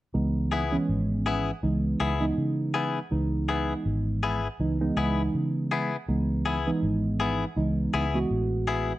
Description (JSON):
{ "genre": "blues", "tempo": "81 BPM", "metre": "4/4", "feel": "swing 55% on 16ths", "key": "C# minor", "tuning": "A4 = 441 Hz", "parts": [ { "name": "mellow reed electric piano", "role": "accompaniment", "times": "0.1-8.9 s", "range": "E3 to F#4", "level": "-28 LUFS", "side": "right 2 dB", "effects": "phaser" }, { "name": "vintage muted fingered electric bass", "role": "bass", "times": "0.1-8.9 s", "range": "G#1 to C#3", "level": "-29 LUFS", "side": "equal", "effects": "none" }, { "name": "direct-recorded clean electric guitar", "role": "stabs", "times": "0.5-8.9 s", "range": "B3 to G#4", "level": "-29 LUFS", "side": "left 5 dB", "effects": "none" } ], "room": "light reverb", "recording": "none", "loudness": "-24 LUFS", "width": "side -16 dB against mid", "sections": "0.1-9.0 A section", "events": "none", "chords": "0.1 C#m7" }